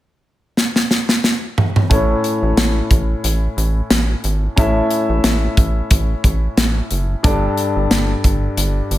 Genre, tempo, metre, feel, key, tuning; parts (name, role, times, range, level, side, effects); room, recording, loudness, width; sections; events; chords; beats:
1980s-style pop; 90 BPM; 4/4; swing 55% on 16ths; A mixolydian; A4 = 441 Hz
modern studio drum kit; drums; 0.6-9.0 s; hi-hat, kick drum, snare drum, toms; -16 LUFS; equal; gated reverb
warm grand piano; accompaniment; 1.9-9.0 s; G2 to E5; -20 LUFS; left 2 dB
rubbery square bass; bass; 1.9-9.0 s; F#1 to A1; -18 LUFS; equal
small room ambience; -14 LUFS; side -15 dB against mid
0.0-1.9 A section; 1.9-9.0 B section
drum fill 0.6-1.9
0.0 N.C.; 1.9 A; 7.2 Gsus2
0.57 1.24 | 1.91 2.58 3.24 3.91 | 4.58 5.24 5.91 6.58 | 7.24 7.91 8.57